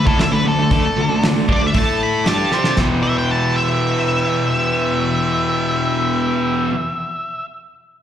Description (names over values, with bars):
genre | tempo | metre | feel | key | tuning
garage rock duo or trio | 116 BPM | 4/4 | straight | E minor | A4 = 440 Hz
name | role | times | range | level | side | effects
octave-fuzz lead guitar | melody | 0.0-7.5 s | A4 to B5 | -21 LUFS | left 1 dB | distortion, slapback echo
overdriven combo organ | sustained chords | 0.0-6.7 s | D4 to E5 | -27 LUFS | left 1 dB | none
fuzz guitar | riff | 0.0-6.7 s | E2 to C5 | -18 LUFS | equal | distortion, slapback echo
cloth-damped thuddy drum kit | drums | 0.1-2.9 s | hi-hat, kick drum, snare drum, splash cymbal | -19 LUFS | equal | none
room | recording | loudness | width
light reverb | live gig heard through the venue's PA, recital hall reverb | -15 LUFS | side -10 dB against mid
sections
0.0-2.8 A section; 2.8-6.9 B section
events
drum fill 2.5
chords
0.0 D5; 1.7 A5; 2.3 D5; 2.8 Em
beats
0.20 | 0.71 1.23 1.75 2.27 | 2.79 3.30 3.82 4.34 | 4.86 5.38 5.90 6.42